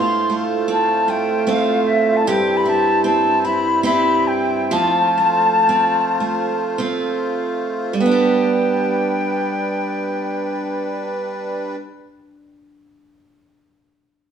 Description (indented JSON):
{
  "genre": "celtic folk, Celtic slow air",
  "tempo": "47-78 BPM",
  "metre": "3/4",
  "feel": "rubato",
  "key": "G mixolydian",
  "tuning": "A4 = 440 Hz",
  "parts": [
    { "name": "wooden flute", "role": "melody", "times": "0.0-11.8 s", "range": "E5 to C6", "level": "-19 LUFS", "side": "left 2 dB", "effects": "none" },
    { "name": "picked steel-string acoustic guitar", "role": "accompaniment", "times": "0.0-11.9 s", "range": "G2 to G4", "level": "-19 LUFS", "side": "right 3 dB", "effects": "none" },
    { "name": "accordion", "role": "sustained chords", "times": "0.0-11.8 s", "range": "G3 to C5", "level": "-25 LUFS", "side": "equal", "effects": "light tremolo tuning" }
  ],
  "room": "wet stone room reverb, RT60 1.2 s",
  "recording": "band playing live in one room, studio ambience",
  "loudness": "-16 LUFS",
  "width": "side -8 dB against mid",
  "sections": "0.0-8.0 A section; 8.0-11.6 B section",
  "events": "slowing down 2.2-8.0",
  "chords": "0.0 F/A; 2.2 C/G; 4.7 F; 8.0 G"
}